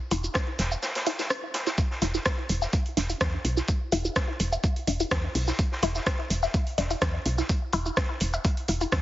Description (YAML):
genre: minimal techno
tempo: 126 BPM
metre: 4/4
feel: straight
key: unclear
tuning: A4 = 440 Hz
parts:
  - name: resonant blip pluck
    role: riff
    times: 0.1-8.8 s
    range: D4 to E5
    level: -31 LUFS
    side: left 1 dB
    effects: phaser, sidechain pumping, digital delay
  - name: woody FM bass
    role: bass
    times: 0.1-9.0 s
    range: E1 to E2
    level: -28 LUFS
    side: equal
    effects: sidechain pumping
  - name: garage drum kit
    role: drums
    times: 0.1-9.0 s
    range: hi-hat, rim click, shaker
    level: -31 LUFS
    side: right 1 dB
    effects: overdrive
  - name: street-band drum kit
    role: drums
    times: 0.1-9.0 s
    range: hi-hat, snare drum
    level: -35 LUFS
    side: equal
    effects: high-pass filter on hats, high-pass filter on snare, high-pass filter on room
  - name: electronic kick drum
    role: drums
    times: 0.4-9.0 s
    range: none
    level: -27 LUFS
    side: equal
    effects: overdrive
room: light reverb, small room reverb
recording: heavily compressed radio sound, nothing above 7.5 kHz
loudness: -25 LUFS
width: side -14 dB against mid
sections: 0.0-9.0 A section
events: filter sweep on synth pluck 0.0-9.0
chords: 0.0 E5